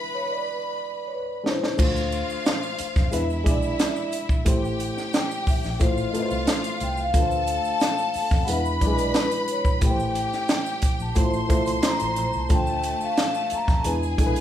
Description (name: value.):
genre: lush 1970s-style soul.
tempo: 90 BPM.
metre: 4/4.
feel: straight.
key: D minor.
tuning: A4 = 440 Hz.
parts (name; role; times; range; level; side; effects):
vibraphone with soft mallets; melody; 0.0-14.4 s; B4 to Bb5; -29 LUFS; left 1 dB; none.
rich studio string section; second line; 0.0-14.4 s; A3 to C6; -30 LUFS; left 2 dB; none.
reed electric piano; accompaniment; 0.0-14.4 s; F#3 to D5; -29 LUFS; left 1 dB; fast tremolo.
compact cocktail drum kit; drums; 1.5-14.4 s; crash cymbal, hi-hat, kick drum, snare drum; -23 LUFS; equal; none.
vintage muted fingered electric bass; bass; 1.8-14.4 s; A1 to F2; -30 LUFS; equal; none.
tube shaker; percussion; 1.8-14.4 s; none; -45 LUFS; right 7 dB; none.
room: wet large studio reverb, RT60 0.8 s.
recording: band playing live in one room.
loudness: -21 LUFS.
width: side -11 dB against mid.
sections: 0.0-1.8 A section; 1.8-14.4 B section.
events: break 0.0-1.8; drum fill 0.4-1.8.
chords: 0.0 E7; 1.8 Dm7; 3.1 E7; 4.5 Am7; 5.8 Fmaj7/A; 7.1 Dm7; 8.5 E7; 9.8 Am7; 11.2 Fmaj7/A; 12.5 Dm7; 13.8 E7.